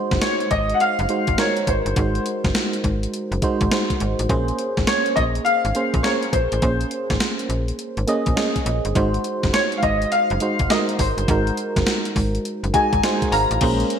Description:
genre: R&B, new jack swing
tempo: 103 BPM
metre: 4/4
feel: swing 64% on 16ths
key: unclear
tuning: A4 = 440 Hz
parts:
  - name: FM electric piano with tremolo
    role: accompaniment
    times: 0.0-14.0 s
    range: Ab3 to Bb5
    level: -23 LUFS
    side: right 2 dB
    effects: none
  - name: slap-like FM bass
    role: bass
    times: 0.1-13.8 s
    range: Gb1 to Bb1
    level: -24 LUFS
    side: equal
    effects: none
  - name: gated 80s digital drum machine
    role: drums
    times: 0.1-14.0 s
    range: crash cymbal, hi-hat, kick drum, snare drum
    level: -23 LUFS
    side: equal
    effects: gated reverb, gated reverb snare
  - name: warm baby grand piano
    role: melody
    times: 0.2-14.0 s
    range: C5 to Bb5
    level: -21 LUFS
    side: left 2 dB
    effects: lush chorus
  - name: lush unison pad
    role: sustained chords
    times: 13.6-14.0 s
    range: Ab3 to Db4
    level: -25 LUFS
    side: equal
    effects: chorus
room: moderate lush hall reverb, RT60 1.6 s, digital ambience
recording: bright 1980s-style digital production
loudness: -18 LUFS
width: side -8 dB against mid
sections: 0.0-13.6 A section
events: FM electric piano fill 12.5-13.6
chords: 0.0 Ab7; 4.3 Bbm9; 9.0 Ab7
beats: 0.22 0.80 1.38 | 1.97 2.55 3.13 3.71 | 4.30 4.88 5.46 6.04 | 6.63 7.21 7.79 8.38 | 8.96 9.54 10.12 10.71 | 11.29 11.87 12.45 13.04 | 13.62

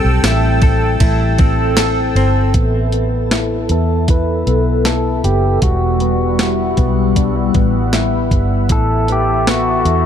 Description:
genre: dream pop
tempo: 78 BPM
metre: 4/4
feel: straight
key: A dorian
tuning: A4 = 440 Hz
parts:
  - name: pedal steel guitar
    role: melody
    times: 0.0-10.1 s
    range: F#4 to B4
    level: -21 LUFS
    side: equal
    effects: low-pass filter, digital delay, shimmer reverb
  - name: phased analog pad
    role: sustained chords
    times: 0.0-10.1 s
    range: G3 to E6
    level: -20 LUFS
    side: equal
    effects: phaser, chorus, low-pass filter, shimmer reverb
  - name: direct-recorded clean electric guitar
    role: arpeggios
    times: 0.0-10.1 s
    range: E3 to A4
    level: -20 LUFS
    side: left 5 dB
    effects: analog chorus, low-pass filter, digital delay, shimmer reverb
  - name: vintage muted fingered electric bass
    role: bass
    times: 0.0-10.1 s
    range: E1 to E2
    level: -17 LUFS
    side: equal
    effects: none
  - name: crisp 8-bit digital drum machine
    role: drums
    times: 0.2-10.0 s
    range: hi-hat, kick drum, ride cymbal, snare drum, tambourine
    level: -16 LUFS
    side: right 1 dB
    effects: none
room: light reverb, digital ambience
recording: dark, warm production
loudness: -12 LUFS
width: side -9 dB against mid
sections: 0.0-2.5 A section; 2.5-10.1 B section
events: none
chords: 0.0 Am7; 2.5 Asus2; 5.6 Emadd9; 8.7 Asus2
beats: 0.24 1.01 1.78 | 2.55 3.32 4.09 4.86 | 5.62 6.39 7.16 7.93 | 8.70 9.47

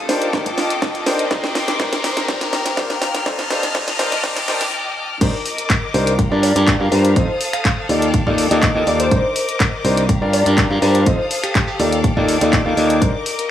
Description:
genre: piano house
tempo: 123 BPM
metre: 4/4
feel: straight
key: C dorian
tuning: A4 = 440 Hz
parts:
  - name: clear studio string section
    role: sustained chords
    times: 0.0-13.5 s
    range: G4 to F6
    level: -24 LUFS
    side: left 3 dB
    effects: sidechain pumping
  - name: riser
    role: sound effects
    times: 0.0-4.7 s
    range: none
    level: -28 LUFS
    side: right 1 dB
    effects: none
  - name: airy breathy pad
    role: texture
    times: 0.0-4.7 s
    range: Eb4 to D6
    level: -28 LUFS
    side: right 1 dB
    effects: chorus, sidechain pumping
  - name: clear grand piano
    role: riff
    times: 0.1-13.1 s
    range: D4 to F5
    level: -21 LUFS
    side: equal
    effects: sidechain pumping, tape echo
  - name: house drum kit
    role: drums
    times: 0.1-13.5 s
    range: crash cymbal, finger snaps, handclaps, hi-hat, snare drum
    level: -22 LUFS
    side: equal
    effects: none
  - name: electronic kick drum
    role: drums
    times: 0.3-13.1 s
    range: none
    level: -19 LUFS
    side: equal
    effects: none
  - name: modern bright fingered electric bass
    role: bass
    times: 5.2-13.1 s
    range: C2 to G2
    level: -18 LUFS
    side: equal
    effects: sidechain pumping
  - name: glassy wavetable pluck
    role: melody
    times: 6.4-11.8 s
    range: G4 to F5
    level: -23 LUFS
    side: left 1 dB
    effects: chorus, tape echo
room: light reverb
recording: dry, gritty hardware recording, transformer saturation, high-pass filter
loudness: -15 LUFS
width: side -11 dB against mid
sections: 0.0-5.2 A section; 5.2-13.5 B section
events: build-up 0.0-5.2; drum fill 0.0-4.7; riser 0.0-4.7; filter sweep on grand piano 0.0-5.2; filter sweep 0.0-5.2; break 4.7-5.2; drop 5.2-13.5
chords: 0.1 Ebmaj9#11; 1.3 Cm9; 2.3 Gm7; 3.3 F7; 4.0 Ebmaj9#11; 5.2 Cm9; 6.2 Gm7; 7.2 F7; 7.9 Ebmaj9#11; 9.1 Cm9; 10.1 Gm7; 11.1 F7; 11.8 Ebmaj9#11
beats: 0.33 0.82 | 1.31 1.80 2.29 2.77 | 3.26 3.75 4.24 4.72 | 5.21 5.70 6.19 6.67 | 7.16 7.65 8.14 8.63 | 9.11 9.60 10.09 10.58 | 11.06 11.55 12.04 12.53 | 13.02 13.50

